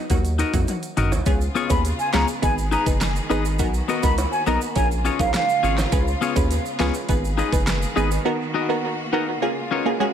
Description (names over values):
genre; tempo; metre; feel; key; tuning
dancehall; 103 BPM; 4/4; straight; G# dorian; A4 = 440 Hz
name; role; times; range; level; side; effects
wavetable chord stab; accompaniment; 0.1-10.1 s; F#3 to B4; -26 LUFS; right 1 dB; dub echo
saturated sub bass; bass; 0.1-8.2 s; F#1 to E#2; -24 LUFS; equal; none
pop drum kit; drums; 0.1-7.8 s; hi-hat, kick drum, rim click, snare drum, toms; -24 LUFS; equal; vintage 12-bit sampler grit
tube shaker and timbales; percussion; 0.1-8.2 s; none; -34 LUFS; right 4 dB; dub echo
clean electric guitar; arpeggios; 0.4-9.8 s; B3 to D#5; -27 LUFS; left 7 dB; dub echo
clear studio string section; sustained chords; 1.3-10.1 s; C#3 to G#4; -31 LUFS; equal; sidechain pumping
mellow silver concert flute; melody; 1.7-5.8 s; E#5 to B5; -26 LUFS; right 2 dB; dub echo
room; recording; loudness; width
light reverb, digital ambience; echo-heavy mix; -19 LUFS; side -9 dB against mid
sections
0.0-1.3 A section; 1.3-10.1 B section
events
drum fill 0.7-1.3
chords
0.1 D#m; 1.3 C#7; 2.4 G#m; 3.6 Bmaj7; 4.8 A#m7; 5.9 C#7; 7.1 G#m; 8.3 Bmaj7; 9.4 A#m7